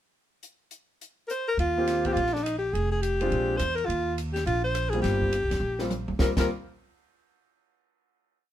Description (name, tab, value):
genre	jazz, small-group swing and bop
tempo	208 BPM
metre	4/4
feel	swing 61% on 8ths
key	Eb major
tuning	A4 = 439 Hz
part	compact cocktail drum kit	drums	0.4-6.4 s	crash cymbal, hi-hat, kick drum, ride cymbal, rim click, snare drum, toms	-33 LUFS	right 1 dB	none
part	clear alto saxophone	melody	1.3-6.5 s	D4 to C5	-27 LUFS	equal	none
part	upright bass	bass	1.6-6.5 s	F1 to Fb2	-30 LUFS	equal	none
part	warm concert grand piano	accompaniment	1.8-6.5 s	G3 to G4	-30 LUFS	equal	none
room	light reverb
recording	minimal, uncompressed stereo recording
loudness	-24 LUFS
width	side -11 dB against mid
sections	0.4-1.6 pickup bar; 1.6-6.2 A section; 6.2-7.3 final chord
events	drum fill 5.6-6.2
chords	0.4 N.C.; 1.6 Eb69; 2.7 Fmadd9; 3.3 Bb7; 3.9 Eb69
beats	| 0.43 0.72 1.01 1.30 | 1.59 1.88 2.16 2.45 | 2.74 3.03 3.32 3.60 | 3.89 4.18 4.47 4.75 | 5.04 5.33 5.62 5.90 | 6.19 6.48